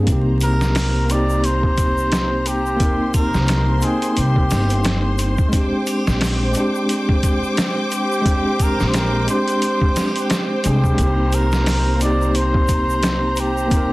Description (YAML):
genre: trip hop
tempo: 88 BPM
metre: 4/4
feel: swing 57% on 16ths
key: C minor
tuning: A4 = 440 Hz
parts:
  - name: tine electric piano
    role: accompaniment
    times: 0.0-13.9 s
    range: Ab3 to G5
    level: -22 LUFS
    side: equal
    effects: harmonic tremolo, tape echo
  - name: upright bass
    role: bass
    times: 0.0-13.9 s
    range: G1 to C2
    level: -20 LUFS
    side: equal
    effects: none
  - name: rich symphonic string section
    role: sustained chords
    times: 0.1-13.9 s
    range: C5 to D6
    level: -27 LUFS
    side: equal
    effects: none
  - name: trip hop sampler-style drum kit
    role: drums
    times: 0.1-13.9 s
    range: hi-hat, kick drum, snare drum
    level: -21 LUFS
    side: equal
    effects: none
  - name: egg shaker and triangle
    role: percussion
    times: 0.1-13.9 s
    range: none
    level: -36 LUFS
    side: left 5 dB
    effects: none
  - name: trumpet with cup mute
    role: melody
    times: 0.4-13.9 s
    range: G4 to D5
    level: -23 LUFS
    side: equal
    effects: tape echo
room: small room ambience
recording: dense, heavily limited modern master, vinyl crackle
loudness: -16 LUFS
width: side -20 dB against mid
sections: 0.0-13.9 A section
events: none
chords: 0.1 Cm7; 5.5 Bb13; 11.0 Cm7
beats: | 0.08 0.76 1.44 2.12 | 2.80 3.49 4.17 4.85 | 5.53 6.21 6.89 7.58 | 8.26 8.94 9.62 10.30 | 10.99 11.67 12.35 13.03 | 13.71